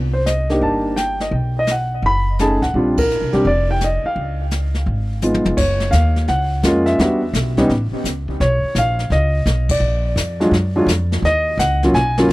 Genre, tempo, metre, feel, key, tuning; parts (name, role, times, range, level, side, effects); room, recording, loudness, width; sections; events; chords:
jazz piano trio; 170 BPM; 4/4; swing 65% on 8ths; A4 = 440 Hz
upright bass; bass; 0.0-12.3 s; F1 to F#2; -19 LUFS; equal
warm grand piano; melody; 0.1-12.3 s; F#3 to B5; -18 LUFS; equal; tape echo
jazz brush drum kit; drums; 0.3-12.3 s; brushed snare drum, crash cymbal, hi-hat, kick drum, ride cymbal, snare drum, toms; -25 LUFS; left 1 dB
little or no reverb; dry, close 1970s-style studio recording; -15 LUFS; side -19 dB against mid
0.0-5.6 A section; 5.6-12.3 B section
band accent 2.9, 9.6; drum fill 5.2-5.6
0.0 Cm7; 1.3 B7; 2.7 Bb69; 4.2 Db7; 5.6 F#maj7; 7.0 Em7; 7.7 A; 8.4 Bmaj9#11; 9.8 A#(b13); 11.2 D#m7